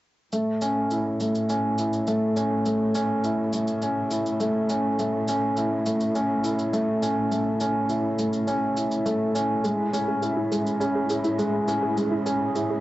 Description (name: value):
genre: piano and strings electronica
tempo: 103 BPM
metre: 4/4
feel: straight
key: A major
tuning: A4 = 440 Hz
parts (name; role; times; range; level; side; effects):
- granular cloud pad; sustained chords; 5.4-12.8 s; C#4 to E5; -35 LUFS; equal; none
- felt-muted upright piano; riff; 0.3-12.8 s; G#3 to E4; -23 LUFS; equal; cassette tape, tape echo
- warm studio cello section; bass; 0.3-12.8 s; A2; -34 LUFS; equal; none
- shaker; drums; 0.3-12.7 s; none; -38 LUFS; equal; cassette tape
- warbly dusty pluck; arpeggios; 9.6-12.8 s; E4 to G#4; -30 LUFS; right 2 dB; chorus, cassette tape, tape echo, plate reverb
room: moderate booth ambience, RT60 0.2 s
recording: home recording on cassette, nothing above 7.9 kHz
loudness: -22 LUFS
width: side -16 dB against mid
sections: 0.3-12.8 A section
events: none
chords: 0.3 A; 9.6 C#m/A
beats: | 0.33 0.91 1.49 2.07 | 2.65 3.24 3.82 4.40 | 4.99 5.57 6.15 6.73 | 7.32 7.90 8.48 9.06 | 9.64 10.23 10.81 11.39 | 11.98 12.56